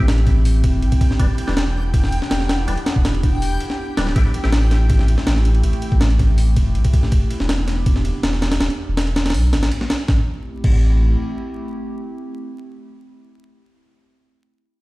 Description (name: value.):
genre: drum and bass, jungle.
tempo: 162 BPM.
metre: 4/4.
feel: straight.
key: A minor.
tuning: A4 = 440 Hz.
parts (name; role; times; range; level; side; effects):
warbly tape-like pad; sustained chords; 0.0-13.3 s; A3 to G4; -28 LUFS; equal; chorus, built-in reverb.
percussive tonewheel organ; stabs; 0.0-4.5 s; E3 to G4; -30 LUFS; left 1 dB; chorus vibrato, fast rotary speaker, vintage 12-bit sampler grit, dub echo.
soft dub sub bass; bass; 0.0-11.2 s; D1 to B1; -17 LUFS; equal; tube saturation.
backwards swelling texture; texture; 0.0-7.1 s; G5; -33 LUFS; left 2 dB; built-in reverb.
breakbeat sampler-style drum kit; drums; 0.1-10.8 s; crash cymbal, hi-hat, kick drum, ride cymbal, snare drum; -18 LUFS; equal; none.
room: digital ambience.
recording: played on a big sound system in a bare room, stone room reverb, vinyl crackle.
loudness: -15 LUFS.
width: side -20 dB against mid.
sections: 0.0-10.1 A section; 10.1-13.0 B section.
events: drop 0.0-10.1.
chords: 0.0 Am7; 1.2 Em7; 4.2 Am7; 7.1 Em7; 10.1 Am7.